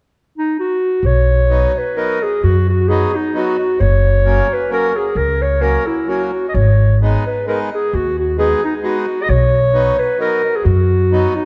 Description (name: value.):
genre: alpine folk, alpine dance band.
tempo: 131 BPM.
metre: 3/4.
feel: swing 54% on 8ths, rubato.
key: B major.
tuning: A4 = 440 Hz.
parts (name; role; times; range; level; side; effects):
mellow clarinet; melody; 0.4-11.4 s; D#4 to D#5; -19 LUFS; equal; none.
upright bass; bass; 1.0-11.2 s; F#1 to F#2; -17 LUFS; equal; none.
accordion; accompaniment; 1.5-11.3 s; F#3 to D#4; -25 LUFS; equal; none.
room: moderate scoring stage reverb, RT60 1.7 s.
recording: dark, warm production.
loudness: -16 LUFS.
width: mono.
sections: 0.0-1.0 A section; 1.0-11.4 B section.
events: none.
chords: 0.0 N.C.; 1.0 Badd9; 3.8 F#; 6.5 G#m; 9.3 B.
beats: 0.10 0.56 | 1.03 1.50 1.96 | 2.43 2.89 3.34 | 3.80 4.25 4.70 | 5.15 5.61 6.08 | 6.54 7.01 7.47 | 7.93 8.38 8.84 | 9.29 9.74 10.20 | 10.66 11.11.